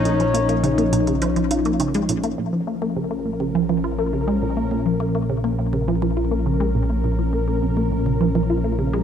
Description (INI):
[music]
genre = ambient, sequencer-driven space music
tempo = 103 BPM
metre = 4/4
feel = straight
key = Bb minor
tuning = A4 = 436 Hz
[part]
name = breathy flute-like synth lead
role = melody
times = 0.0-1.8 s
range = Db5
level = -26 LUFS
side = left 5 dB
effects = lush chorus, ping-pong delay
[part]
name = sweeping resonant pad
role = sustained chords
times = 0.0-9.0 s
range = F3 to Bb4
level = -23 LUFS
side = left 1 dB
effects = chorus
[part]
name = fat analog bass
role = bass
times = 0.0-9.0 s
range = Bb1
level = -25 LUFS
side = equal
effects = none
[part]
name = resonant blip pluck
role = riff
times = 0.1-9.0 s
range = Bb2 to F4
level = -23 LUFS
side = right 1 dB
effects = chorus, phaser, ping-pong delay
[part]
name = electronic hi-hat and bongos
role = percussion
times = 0.1-2.4 s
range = none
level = -29 LUFS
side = right 3 dB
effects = ping-pong delay
[sound]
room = moderate plate reverb, RT60 2.5 s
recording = none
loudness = -19 LUFS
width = side -8 dB against mid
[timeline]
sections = 0.0-2.4 A section; 2.4-9.0 B section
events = none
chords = 0.0 Bbm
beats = | 0.05 0.64 1.22 1.80 | 2.38 2.97 3.55 4.13 | 4.71 5.30 5.88 6.46 | 7.04 7.63 8.21 8.79